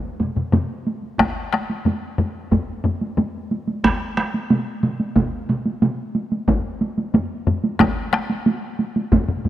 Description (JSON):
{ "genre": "japanese traditional, taiko drum ensemble", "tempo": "91 BPM", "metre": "4/4", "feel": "straight", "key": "none", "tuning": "none", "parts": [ { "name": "solo taiko drums", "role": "percussion", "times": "0.0-9.5 s", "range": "none", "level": "-21 LUFS", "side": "right 2 dB", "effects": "none" }, { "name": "taiko ensemble", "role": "percussion", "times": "0.2-9.5 s", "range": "none", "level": "-22 LUFS", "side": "left 4 dB", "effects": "none" }, { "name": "taiko ensemble", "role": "percussion", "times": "0.2-9.5 s", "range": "none", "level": "-26 LUFS", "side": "right 2 dB", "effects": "none" }, { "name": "taiko ensemble", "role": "percussion", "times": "1.2-9.3 s", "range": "none", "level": "-25 LUFS", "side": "left 1 dB", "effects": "none" } ], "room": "moderate lush hall reverb, RT60 3.0 s", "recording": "rough home demo mix", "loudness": "-19 LUFS", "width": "side -13 dB against mid", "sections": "0.0-1.2 A section; 1.2-9.5 B section", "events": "none", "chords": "none" }